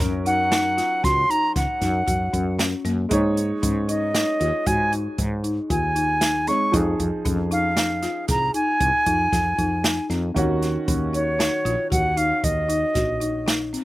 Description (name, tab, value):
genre	progressive instrumental, band music in an uneven meter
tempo	116 BPM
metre	7/4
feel	straight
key	Eb dorian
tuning	A4 = 440 Hz
part	warm grand piano	accompaniment	0.0-13.8 s	Eb3 to Db5	-30 LUFS	right 3 dB	slapback echo
part	folk marimba with medium mallets	arpeggios	0.0-13.8 s	Bb3 to Ab4	-27 LUFS	left 3 dB	none
part	woody fretless electric bass	bass	0.0-13.7 s	Bb1 to Ab2	-26 LUFS	equal	none
part	open jazz drum kit	drums	0.0-13.8 s	hi-hat, kick drum, snare drum	-26 LUFS	equal	none
part	concert flute	melody	0.3-13.5 s	Db5 to Db6	-22 LUFS	right 1 dB	none
room	little or no reverb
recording	recorded outdoors, with no room sound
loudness	-19 LUFS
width	side -17 dB against mid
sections	0.0-13.8 A section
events	none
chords	0.0 Gb; 3.1 Absus4; 6.7 Fm7; 10.4 Ebm7